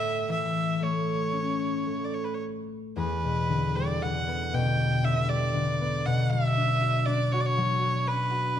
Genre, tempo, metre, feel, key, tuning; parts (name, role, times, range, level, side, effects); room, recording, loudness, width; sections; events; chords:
celtic folk, Celtic slow air; 53-61 BPM; 3/4; rubato; A4 = 440 Hz
clear erhu; melody; 0.0-8.6 s; B4 to G5; -29 LUFS; right 2 dB
concert harp; accompaniment; 0.0-8.6 s; E2 to G4; -26 LUFS; left 2 dB
moderate recital hall reverb, RT60 1.3 s; close, detailed microphones; -24 LUFS; side -10 dB against mid
0.0-3.0 A section; 3.0-8.6 B section
0.0 A; 3.0 Em7; 6.1 Bm